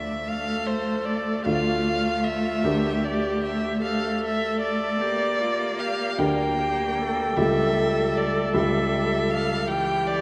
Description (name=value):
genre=classical, slow romantic movement for piano quartet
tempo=51 BPM (dotted quarters)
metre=12/8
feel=rubato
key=unclear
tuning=A4 = 441 Hz
part: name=warm violin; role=melody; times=0.0-10.2 s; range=C5 to G5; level=-29 LUFS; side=equal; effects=none
part: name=rich cello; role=second line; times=0.0-10.2 s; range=E3 to Bb3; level=-32 LUFS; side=equal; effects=none
part: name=warm baby grand piano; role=accompaniment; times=0.0-10.2 s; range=C#2 to Bb4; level=-30 LUFS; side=equal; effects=none
part: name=rich viola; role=accompaniment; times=0.3-10.2 s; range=F4 to Bb4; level=-31 LUFS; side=equal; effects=none
room=wet cathedral reverb, RT60 4.8 s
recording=in a vast, echoing space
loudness=-24 LUFS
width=mono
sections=0.0-10.2 A section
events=none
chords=0.0 Dm; 2.7 Gm/D; 7.4 A7/C#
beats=0.30 1.48 | 2.65 3.84 5.02 6.19 | 7.37 8.54 9.68